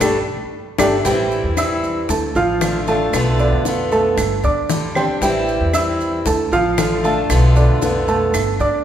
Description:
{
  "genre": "latin, Cuban son and guajira",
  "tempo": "115 BPM",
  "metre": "4/4",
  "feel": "straight",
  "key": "A minor",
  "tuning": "A4 = 440 Hz",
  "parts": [
    { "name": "picked old ladder-braced acoustic guitar", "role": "accompaniment", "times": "0.0-8.4 s", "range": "B2 to G4", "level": "-21 LUFS", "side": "left 1 dB", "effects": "none" },
    { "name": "dark grand piano", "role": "arpeggios", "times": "0.0-8.8 s", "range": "D3 to E6", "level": "-19 LUFS", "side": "right 2 dB", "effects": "none" },
    { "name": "upright bass", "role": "bass", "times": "0.0-8.8 s", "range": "G1 to F2", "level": "-20 LUFS", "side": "equal", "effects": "none" },
    { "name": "bongos", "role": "percussion", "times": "0.0-8.8 s", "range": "none", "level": "-26 LUFS", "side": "left 4 dB", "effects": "none" },
    { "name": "claves", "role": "percussion", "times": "0.0-8.6 s", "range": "none", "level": "-30 LUFS", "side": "right 2 dB", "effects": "none" },
    { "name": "maracas", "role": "percussion", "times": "0.0-8.8 s", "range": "none", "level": "-31 LUFS", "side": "right 4 dB", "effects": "none" }
  ],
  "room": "wet recital hall reverb, RT60 1.8 s",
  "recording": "recorded in a church or concert hall",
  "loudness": "-15 LUFS",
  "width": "side -10 dB against mid",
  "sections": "0.0-1.1 A section; 1.1-8.8 A section",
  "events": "band accent 0.0-1.1; drum fill 0.3-1.1",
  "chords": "0.0 Gsus2; 1.1 Am7; 2.1 Dm; 3.1 Bm7b5; 4.2 Gsus2; 5.2 Am7; 6.3 Dm; 7.3 Bm7b5; 8.3 Gsus2"
}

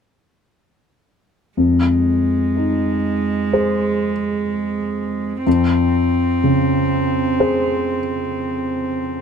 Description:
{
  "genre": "neoclassical piano and strings",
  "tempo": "62 BPM",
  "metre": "4/4",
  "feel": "rubato",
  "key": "F minor",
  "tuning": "A4 = 439 Hz",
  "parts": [
    { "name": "warm cello", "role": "second line", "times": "1.6-9.2 s", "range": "Ab3 to C4", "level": "-22 LUFS", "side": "right 5 dB", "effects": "none" },
    { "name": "dark baby grand piano", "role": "accompaniment", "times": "1.6-9.2 s", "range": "F2 to C5", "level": "-18 LUFS", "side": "left 2 dB", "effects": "none" }
  ],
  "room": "little or no reverb",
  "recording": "close, detailed microphones",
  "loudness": "-16 LUFS",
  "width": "side -7 dB against mid",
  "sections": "1.6-9.2 A section",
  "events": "none",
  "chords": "1.6 Fm7; 5.5 Dbmaj7/F"
}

